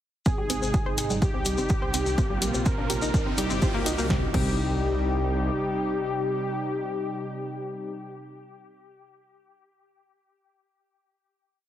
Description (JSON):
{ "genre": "melodic techno", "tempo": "125 BPM", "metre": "4/4", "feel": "straight", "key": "C minor", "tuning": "A4 = 439 Hz", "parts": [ { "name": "analog synth brass", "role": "melody", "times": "0.3-8.1 s", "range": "G4 to Bb4", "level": "-31 LUFS", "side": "left 3 dB", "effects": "chorus, sidechain pumping, dub echo" }, { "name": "warm analog pad", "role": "sustained chords", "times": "0.3-7.9 s", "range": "C3 to F4", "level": "-32 LUFS", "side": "right 2 dB", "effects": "wide subtle chorus, sidechain pumping" }, { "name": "analog pluck", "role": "arpeggios", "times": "0.3-4.5 s", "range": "G3 to C5", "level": "-32 LUFS", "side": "equal", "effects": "chorus, sidechain pumping, ping-pong delay" }, { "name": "swelling detuned saw bass", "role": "bass", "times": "0.3-5.5 s", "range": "G1 to C2", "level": "-30 LUFS", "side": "equal", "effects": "sidechain pumping" }, { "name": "electronic kick drum", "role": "drums", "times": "0.3-4.5 s", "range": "none", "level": "-26 LUFS", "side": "equal", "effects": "none" }, { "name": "house drum kit", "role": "drums", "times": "0.3-4.5 s", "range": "crash cymbal, hi-hat, snare drum, toms", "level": "-33 LUFS", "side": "left 1 dB", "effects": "high-pass filter on toms, high-pass filter on hats, high-pass filter on snare, high-pass filter on cymbals" }, { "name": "shekere", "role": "percussion", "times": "0.3-4.1 s", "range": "none", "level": "-34 LUFS", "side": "left 3 dB", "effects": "none" }, { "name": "riser and impact", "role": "sound effects", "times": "1.4-7.9 s", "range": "none", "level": "-36 LUFS", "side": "equal", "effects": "none" } ], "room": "light reverb", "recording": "heavily compressed radio sound, multiband compression", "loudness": "-24 LUFS", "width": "side -12 dB against mid", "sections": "0.3-4.1 build; 4.1-7.9 final chord", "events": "build-up 0.3-4.1; drum fill 0.3-4.1; filter sweep on synth arpeggio sound 0.3-4.1; riser 1.4-4.1", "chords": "0.3 Ab; 1.2 Cm; 2.2 Bbsus2; 3.1 Cm" }